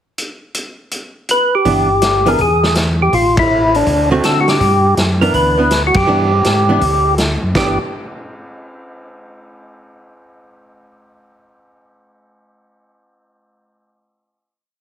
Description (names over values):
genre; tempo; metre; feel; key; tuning
soul jazz organ trio; 163 BPM; 4/4; swing 66% on 8ths; G major; A4 = 439 Hz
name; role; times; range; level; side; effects
vintage drum kit; drums; 0.2-7.7 s; crash cymbal, hi-hat, kick drum, ride cymbal, snare drum; -20 LUFS; equal; none
percussive tonewheel organ; melody; 1.3-7.8 s; D4 to B4; -14 LUFS; equal; slow rotary speaker, overdrive
archtop guitar, miked and amplified; accompaniment; 1.7-7.8 s; D3 to Ab4; -18 LUFS; right 3 dB; none
mellow tonewheel organ; bass; 1.7-7.8 s; G1 to D3; -18 LUFS; equal; overdrive, slow rotary speaker
room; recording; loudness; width
moderate large studio reverb, RT60 1.1 s; heavily compressed radio sound, multiband compression; -12 LUFS; side -9 dB against mid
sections
0.2-1.7 pickup bar; 1.7-7.5 A section; 7.5-9.0 final chord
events
band accent 3.3, 5.9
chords
0.2 N.C.; 1.7 G6; 2.4 E; 3.1 A5; 3.9 D7; 4.6 G6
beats
| 0.18 0.55 0.92 1.29 | 1.66 2.02 2.39 2.76 | 3.13 3.50 3.87 4.24 | 4.61 4.97 5.34 5.71 | 6.08 6.45 6.82 7.18 | 7.55